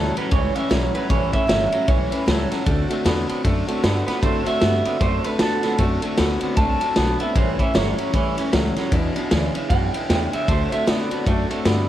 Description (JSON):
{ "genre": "rockabilly", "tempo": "154 BPM", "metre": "4/4", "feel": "swing 60% on 8ths", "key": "A mixolydian", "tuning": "A4 = 439 Hz", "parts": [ { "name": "electric guitar through a small old amp", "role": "melody", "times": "0.0-11.6 s", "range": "A4 to A5", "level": "-25 LUFS", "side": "right 3 dB", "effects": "spring reverb, tape echo" }, { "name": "picked steel-string acoustic guitar", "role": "accompaniment", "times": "0.0-11.9 s", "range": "E2 to F#4", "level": "-26 LUFS", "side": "left 3 dB", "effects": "plate reverb" }, { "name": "twangy electric guitar", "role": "riff", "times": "0.0-11.9 s", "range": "E2 to B3", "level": "-27 LUFS", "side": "right 3 dB", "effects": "wide subtle chorus" }, { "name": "upright bass", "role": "bass", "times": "0.0-11.9 s", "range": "G1 to A2", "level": "-25 LUFS", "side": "equal", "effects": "none" }, { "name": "raw garage drum kit", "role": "drums", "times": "0.2-11.8 s", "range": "kick drum, ride cymbal, snare drum", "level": "-22 LUFS", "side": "equal", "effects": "none" } ], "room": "moderate studio reverb, RT60 0.6 s", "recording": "none", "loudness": "-18 LUFS", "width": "side -12 dB against mid", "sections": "0.0-11.9 A section", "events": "none", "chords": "0.0 A7; 2.7 D7; 7.4 A7; 8.9 E7; 10.5 D7" }